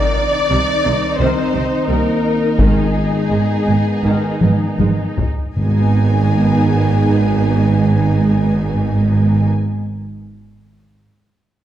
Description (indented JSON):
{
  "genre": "cinematic, epic orchestral film score",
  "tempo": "76-89 BPM",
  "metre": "4/4",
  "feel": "straight",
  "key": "unclear",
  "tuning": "A4 = 438 Hz",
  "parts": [
    { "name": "warm symphonic violin section", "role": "melody", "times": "0.0-9.5 s", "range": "G#4 to D5", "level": "-24 LUFS", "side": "left 4 dB", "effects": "none" },
    { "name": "rich studio violin section", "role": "second line", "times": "0.0-9.5 s", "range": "G#4 to G#5", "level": "-27 LUFS", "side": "left 2 dB", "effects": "none" },
    { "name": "rich symphonic viola section", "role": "accompaniment", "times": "0.0-9.5 s", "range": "Eb3 to Eb4", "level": "-23 LUFS", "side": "right 1 dB", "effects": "none" },
    { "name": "clear trombone section", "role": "sustained chords", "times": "0.0-9.5 s", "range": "D#3 to C4", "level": "-24 LUFS", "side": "right 2 dB", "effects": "none" },
    { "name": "mellow French horn section", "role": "sustained chords", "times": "0.0-9.5 s", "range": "G#3 to D5", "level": "-23 LUFS", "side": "left 2 dB", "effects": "none" },
    { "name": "clear symphonic cello section", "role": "bass", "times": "0.5-9.5 s", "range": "G#2 to C3", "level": "-19 LUFS", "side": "right 2 dB", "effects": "none" },
    { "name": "clear symphonic double bass section", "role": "bass", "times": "0.5-9.5 s", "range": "G#1 to C2", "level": "-19 LUFS", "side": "right 3 dB", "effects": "none" },
    { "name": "taiko ensemble", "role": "drums", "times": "2.6-5.5 s", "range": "none", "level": "-18 LUFS", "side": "equal", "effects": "none" },
    { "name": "timpani", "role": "percussion", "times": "2.6-10.2 s", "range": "G#2", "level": "-24 LUFS", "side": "left 1 dB", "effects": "none" }
  ],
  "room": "moderate scoring stage reverb, RT60 1.5 s",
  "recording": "dark, warm production",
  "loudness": "-13 LUFS",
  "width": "side -11 dB against mid",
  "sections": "0.0-5.6 A section; 5.6-8.7 B section",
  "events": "slowing down 0.0-5.6; drum fill 4.4-5.6",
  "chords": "0.0 Cm; 2.6 G#m"
}